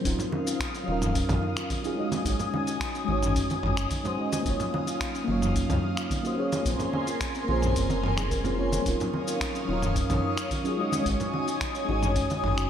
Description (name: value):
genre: sunset chillout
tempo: 109 BPM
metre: 4/4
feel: straight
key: Eb dorian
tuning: A4 = 440 Hz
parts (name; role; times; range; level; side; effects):
- mellow FM electric piano; accompaniment; 0.0-12.7 s; Gb3 to Eb5; -30 LUFS; equal; chorus, phaser, auto-pan, diffuse ambient delay
- airy breathy pad; sustained chords; 0.0-12.7 s; Bb4 to Eb6; -33 LUFS; left 1 dB; chorus, phaser
- kalimba; arpeggios; 0.1-12.7 s; C4 to Bb4; -36 LUFS; equal; diffuse ambient delay
- warm sub bass; bass; 0.1-12.7 s; Eb1 to Db2; -29 LUFS; equal; none
- dusty soul sampler-style drum kit; drums; 0.1-12.7 s; finger snaps, hi-hat, shaker, toms; -32 LUFS; equal; none
- electronic kick drum; drums; 0.1-12.3 s; none; -33 LUFS; equal; none
- congas; percussion; 0.2-12.4 s; none; -36 LUFS; right 2 dB; none
room: wet cathedral reverb, RT60 5.2 s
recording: dreamy mix soaked in reverb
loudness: -25 LUFS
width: side -9 dB against mid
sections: 0.1-12.7 A section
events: none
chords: 0.1 Ebm9; 2.0 Ab7sus4; 4.5 Ebm9/Gb; 6.4 Bbm9; 8.9 Ebm9; 10.8 Ab7sus4